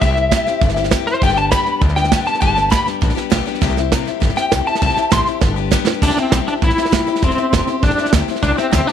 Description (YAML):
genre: rockabilly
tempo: 200 BPM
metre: 4/4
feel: straight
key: C major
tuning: A4 = 440 Hz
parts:
  - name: electric guitar at the edge of break-up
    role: melody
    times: 0.0-8.9 s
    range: C4 to C6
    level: -18 LUFS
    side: left 1 dB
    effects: tremolo, tape echo
  - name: picked steel-string acoustic guitar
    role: accompaniment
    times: 0.0-8.9 s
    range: G2 to G4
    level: -21 LUFS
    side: left 15 dB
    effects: none
  - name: upright bass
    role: bass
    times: 0.0-8.9 s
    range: E1 to D2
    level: -21 LUFS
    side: equal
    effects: none
  - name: soft brush drum kit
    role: drums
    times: 0.0-8.9 s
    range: crash cymbal, hi-hat, kick drum, snare drum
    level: -18 LUFS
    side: right 3 dB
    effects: none
room: light reverb, small room ambience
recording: 1960s-style stereo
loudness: -14 LUFS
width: side -9 dB against mid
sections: 0.0-6.0 A section; 6.0-8.9 B section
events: clean electric guitar solo 0.0-6.0; drum fill 5.4-6.0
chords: 0.0 C; 1.2 G; 3.6 C; 5.4 G; 6.0 C